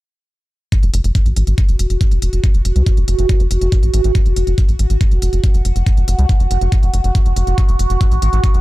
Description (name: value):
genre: psychedelic trance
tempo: 140 BPM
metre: 4/4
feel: straight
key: F# minor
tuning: A4 = 440 Hz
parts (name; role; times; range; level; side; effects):
- overtone-sweeping drone; sustained chords; 1.5-8.6 s; F#4; -23 LUFS; right 2 dB; chorus, built-in reverb, sidechain pumping
- electronic hi-hat; drums; 0.7-8.6 s; none; -30 LUFS; left 1 dB; none
- electronic kick drum; drums; 0.7-8.5 s; none; -13 LUFS; equal; none
- tight sequencer bass; bass; 0.8-8.6 s; F#1 to C#2; -14 LUFS; equal; tube saturation
room: digital ambience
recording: dark, warm production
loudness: -12 LUFS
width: side -18 dB against mid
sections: 0.7-8.6 A section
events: none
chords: 0.7 F#5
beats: | 0.72 1.15 1.58 2.01 | 2.44 2.87 3.29 3.72 | 4.15 4.58 5.01 5.44 | 5.87 6.29 6.72 7.15 | 7.58 8.01 8.44